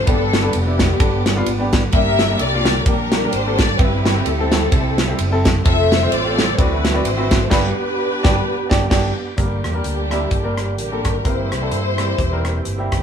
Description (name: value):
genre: uptempo gospel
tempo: 129 BPM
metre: 4/4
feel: swing 57% on 8ths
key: unclear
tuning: A4 = 438 Hz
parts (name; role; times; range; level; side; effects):
- warm symphonic string section; melody; 0.0-12.9 s; Bb3 to E5; -22 LUFS; left 2 dB; none
- bright tonewheel organ; sustained chords; 0.0-13.0 s; D3 to G4; -28 LUFS; right 4 dB; fast rotary speaker, chorus vibrato
- bright baby grand piano; accompaniment; 0.1-13.0 s; G2 to E5; -24 LUFS; equal; none
- fingered electric bass; bass; 0.1-13.0 s; E1 to G2; -22 LUFS; equal; none
- modern studio drum kit; drums; 0.1-13.0 s; crash cymbal, hi-hat, kick drum, ride cymbal, rim click, snare drum; -19 LUFS; equal; none
- mellow French horn section; sustained chords; 9.4-13.0 s; D4 to D5; -35 LUFS; right 1 dB; none
room: moderate studio reverb, RT60 0.6 s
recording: band playing live in one room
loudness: -15 LUFS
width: side -8 dB against mid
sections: 0.0-9.4 A section; 9.4-13.0 B section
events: band accent 7.5-9.4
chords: 0.1 G; 1.9 Gm; 3.8 C/G; 5.7 F; 6.6 D13; 7.5 G; 9.4 Gm; 11.2 C7/G; 12.2 C7/E